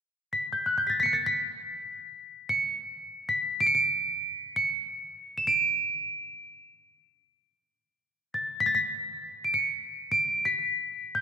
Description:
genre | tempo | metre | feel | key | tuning
world meditative, free-time meditation music | free time | none | none | B minor | A4 = 442 Hz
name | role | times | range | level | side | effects
celesta | solo | 0.3-11.2 s | F#6 to E7 | -25 LUFS | equal | slapback echo
room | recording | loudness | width
wet echo chamber reverb, RT60 2.5 s | dark, warm production | -25 LUFS | side -6 dB against mid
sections
0.0-11.2 A section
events
none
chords
none

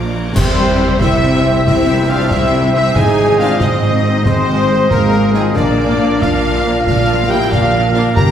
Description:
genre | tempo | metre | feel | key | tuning
cinematic, heroic adventure film score | 92 BPM (dotted quarters) | 12/8 | straight | C mixolydian | A4 = 440 Hz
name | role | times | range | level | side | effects
warm symphonic violin section | melody | 0.0-8.3 s | Ab4 to Bb5 | -22 LUFS | left 2 dB | none
clear studio violin section | second line | 0.0-8.3 s | Ab4 to D6 | -27 LUFS | left 1 dB | none
mellow clarinet | second line | 0.0-8.3 s | Bb4 to C5 | -25 LUFS | right 1 dB | none
warm symphonic viola section | accompaniment | 0.0-8.3 s | F3 to G4 | -21 LUFS | right 1 dB | none
mellow French horn section | sustained chords | 0.0-8.3 s | F3 to Bb4 | -18 LUFS | left 2 dB | none
warm trombone section | sustained chords | 0.0-8.0 s | Eb3 to D4 | -26 LUFS | right 2 dB | none
concert harp | arpeggios | 0.0-8.3 s | G2 to D6 | -26 LUFS | left 2 dB | none
clear symphonic cello section | bass | 0.0-8.3 s | G2 to C3 | -20 LUFS | right 3 dB | none
rich symphonic double bass section | bass | 0.0-8.3 s | G1 to C2 | -19 LUFS | right 1 dB | none
bright oboe | second line | 0.4-8.3 s | D5 to F5 | -26 LUFS | equal | none
mellow hollow silver concert flute | second line | 0.4-8.3 s | Ab4 to Bb5 | -26 LUFS | left 2 dB | none
mellow trumpet section | stabs | 0.4-8.3 s | Ab4 to Bb5 | -22 LUFS | equal | none
concert snare drum, clash cymbals and concert bass drum | drums | 0.4-8.3 s | none | -21 LUFS | equal | none
clash cymbals and concert bass drum | percussion | 0.4-1.2 s | none | -21 LUFS | equal | none
timpani | percussion | 8.2-8.3 s | G2 | -13 LUFS | left 1 dB | none
room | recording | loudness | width
wet scoring stage reverb, RT60 1.7 s | heard from further back in the room | -11 LUFS | side -9 dB against mid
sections
0.4-8.3 A section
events
band accent 0.4-0.8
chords
0.4 C; 3.0 Ab; 5.6 Bb

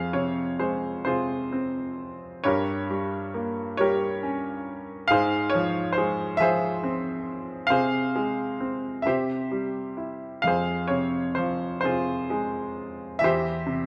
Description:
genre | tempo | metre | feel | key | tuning
classical, lyrical solo piano | 42-47 BPM (dotted quarters) | 6/8 | rubato | F harmonic minor | A4 = 440 Hz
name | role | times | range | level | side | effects
clear baby grand piano | solo | 0.0-13.9 s | E2 to F5 | -27 LUFS | equal | none
room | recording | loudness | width
moderate concert hall reverb, RT60 1.8 s | none | -27 LUFS | mono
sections
0.0-13.9 A section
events
none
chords
0.0 Fm; 2.4 Gdim; 5.1 Fm/Ab; 7.7 Fm/C; 9.0 C; 10.4 Fm; 13.2 C/E

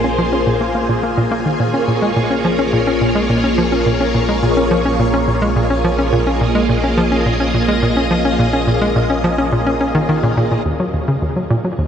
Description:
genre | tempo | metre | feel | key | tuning
ambient | 106 BPM | 4/4 | straight | Bb minor | A4 = 441 Hz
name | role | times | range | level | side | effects
phased string machine | sustained chords | 0.0-11.9 s | Eb2 to Eb5 | -17 LUFS | equal | ensemble chorus, phaser
hollow square pluck | riff | 0.0-11.9 s | Eb2 to Db4 | -17 LUFS | equal | chorus, tape echo
warm sub bass | bass | 0.0-10.6 s | Bb1 | -24 LUFS | equal | none
room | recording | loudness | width
wet huge ambient reverb, RT60 7.8 s | in a vast, echoing space | -13 LUFS | side -8 dB against mid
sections
0.0-10.7 A section; 10.7-11.9 B section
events
none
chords
0.0 Bbm7; 10.7 Ebm7

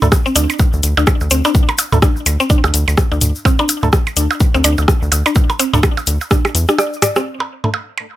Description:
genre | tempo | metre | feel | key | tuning
minimal techno | 126 BPM | 4/4 | swing 59% on 16ths | unclear | A4 = 445 Hz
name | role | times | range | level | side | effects
percussive organ stab | stabs | 0.0-7.7 s | A3 to A4 | -25 LUFS | right 2 dB | chorus, dub echo
rubbery square bass | bass | 0.0-6.7 s | D2 to E2 | -16 LUFS | equal | sidechain pumping
electronic toms and percussion blips | percussion | 0.0-8.1 s | none | -19 LUFS | right 3 dB | overdrive
tube shaker | percussion | 0.0-7.2 s | none | -24 LUFS | left 5 dB | none
booming analog drum machine | drums | 0.1-8.1 s | hi-hat, rim click | -16 LUFS | equal | low-pass filter on hats, low-pass filter on snare
electronic kick drum | drums | 0.1-6.4 s | none | -14 LUFS | equal | none
mallet-like synth pluck | riff | 0.3-7.2 s | C4 to D5 | -19 LUFS | left 1 dB | chorus, sidechain pumping, tape echo
room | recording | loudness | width
little or no reverb | none | -12 LUFS | side -14 dB against mid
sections
0.0-7.3 A section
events
drop 0.0-7.3; drum fill 6.3-7.3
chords
0.0 D5

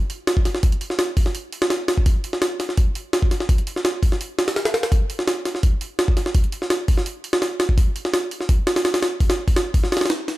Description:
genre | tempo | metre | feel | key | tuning
drum and bass | 168 BPM | 4/4 | straight | none | none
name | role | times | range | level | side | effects
jungle sampler-style drum kit | drums | 0.1-10.4 s | hi-hat, kick drum, snare drum | -18 LUFS | equal | none
room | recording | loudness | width
digital ambience | none | -18 LUFS | side -17 dB against mid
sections
0.0-10.4 A section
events
none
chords
none

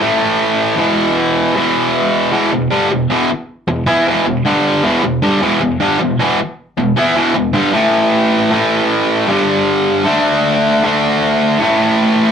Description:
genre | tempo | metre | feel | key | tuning
rock | 155 BPM | 4/4 | straight | unclear | A4 = 442 Hz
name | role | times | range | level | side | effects
overdriven electric guitar | solo | 0.0-12.3 s | E2 to E4 | -12 LUFS | equal | none
room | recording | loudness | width
moderate small room reverb, RT60 0.5 s | rough rehearsal-room recording | -12 LUFS | side -7 dB against mid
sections
0.0-2.3 A section; 2.3-8.5 B section; 8.5-12.3 A section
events
none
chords
0.0 A5; 0.8 E5; 4.5 G5; 4.8 E5; 7.7 A5; 9.3 G5; 10.1 D5; 11.6 A5

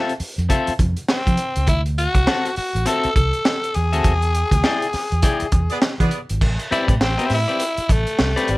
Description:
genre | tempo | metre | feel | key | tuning
funk | 101 BPM | 4/4 | swing 60% on 16ths | A dorian | A4 = 440 Hz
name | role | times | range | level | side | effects
clean electric guitar | accompaniment | 0.0-8.6 s | C4 to G5 | -22 LUFS | left 3 dB | none
crunchy breakbeat drum kit | drums | 0.1-8.6 s | crash cymbal, hi-hat, kick drum, snare drum | -21 LUFS | equal | none
vintage muted fingered electric bass | bass | 0.2-8.6 s | G#1 to F3 | -21 LUFS | equal | none
breathy tenor saxophone | melody | 1.1-8.6 s | G3 to A4 | -22 LUFS | left 1 dB | none
warm horn section | second line | 5.7-6.2 s | B3 to D5 | -25 LUFS | right 3 dB | none
room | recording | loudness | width
light reverb | none | -17 LUFS | side -20 dB against mid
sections
0.0-6.4 A section; 6.4-8.6 B section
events
band accent 4.0-6.4; tenor saxophone solo 6.4-8.6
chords
0.0 Fmaj7; 1.7 D9; 4.0 E7#9; 6.4 Am11

